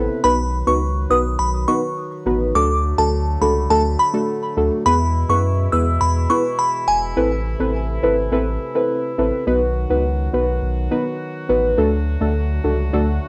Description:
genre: dancehall.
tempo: 104 BPM.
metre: 4/4.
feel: straight.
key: unclear.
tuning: A4 = 440 Hz.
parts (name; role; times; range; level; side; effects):
deep mellow chord stab; accompaniment; 0.0-13.1 s; A3 to B4; -22 LUFS; equal; chorus, cassette tape.
warm brass ensemble; sustained chords; 0.0-13.3 s; B2 to B4; -32 LUFS; equal; cassette tape.
saturated sub bass; bass; 0.0-13.2 s; E1 to F#2; -23 LUFS; equal; none.
glassy synth bell; melody; 0.2-7.0 s; G#5 to E6; -22 LUFS; equal; chorus, cassette tape, tape echo.
room: moderate spring reverb, RT60 1.4 s, digital ambience.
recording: home recording on cassette.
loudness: -19 LUFS.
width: mono.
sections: 0.0-13.3 A section.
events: none.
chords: 0.2 B; 2.5 D; 4.9 E; 7.2 Amadd9; 9.5 B; 11.8 D.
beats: | 0.24 0.82 1.40 1.97 | 2.55 3.13 3.70 4.28 | 4.86 5.43 6.01 6.59 | 7.16 7.74 8.32 8.89 | 9.47 10.05 10.63 11.20 | 11.78 12.36 12.93.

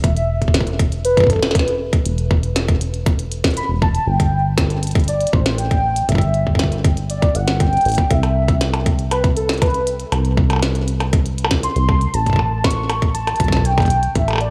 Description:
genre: IDM.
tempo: 119 BPM.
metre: 4/4.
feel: straight.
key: E minor.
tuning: A4 = 442 Hz.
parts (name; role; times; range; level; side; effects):
warm velvety synth lead; melody; 0.0-14.5 s; A4 to C#6; -24 LUFS; equal; chorus, digital delay.
deep acid bass; bass; 0.0-14.5 s; E1 to C2; -22 LUFS; equal; none.
electronic kick drum; drums; 0.0-14.3 s; none; -20 LUFS; equal; none.
glitchy drum kit; drums; 0.0-14.5 s; hi-hat, percussion blips, snare drum; -26 LUFS; equal; none.
room: light reverb, digital ambience.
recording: small room ambience.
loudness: -18 LUFS.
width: mono.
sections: 0.0-14.5 A section.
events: none.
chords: 0.0 Esus4; 4.1 Gsus2; 8.1 C; 12.1 A.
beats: | 0.04 0.54 1.05 1.55 | 2.06 2.56 3.06 3.57 | 4.07 4.58 5.08 5.58 | 6.09 6.59 7.10 7.60 | 8.11 8.61 9.11 9.62 | 10.12 10.63 11.13 11.63 | 12.14 12.64 13.15 13.65 | 14.16.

